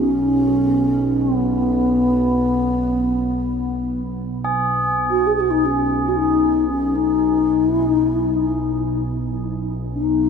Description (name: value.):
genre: world meditative, free-time meditation music.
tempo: free time.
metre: none.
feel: none.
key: B major pentatonic.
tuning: A4 = 440 Hz.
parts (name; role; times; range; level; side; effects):
mellow bass flute; melody; 0.0-10.3 s; B3 to G#4; -18 LUFS; left 2 dB; none.
deep dark ambient pad; drone; 0.0-10.3 s; B1; -24 LUFS; right 3 dB; chorus, built-in reverb.
tubular bells; texture; 4.4-10.3 s; G#4; -25 LUFS; right 2 dB; none.
room: wet huge ambient reverb, RT60 6.5 s.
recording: none.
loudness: -17 LUFS.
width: side -6 dB against mid.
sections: 0.0-4.4 A section; 4.4-10.3 A section.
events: none.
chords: none.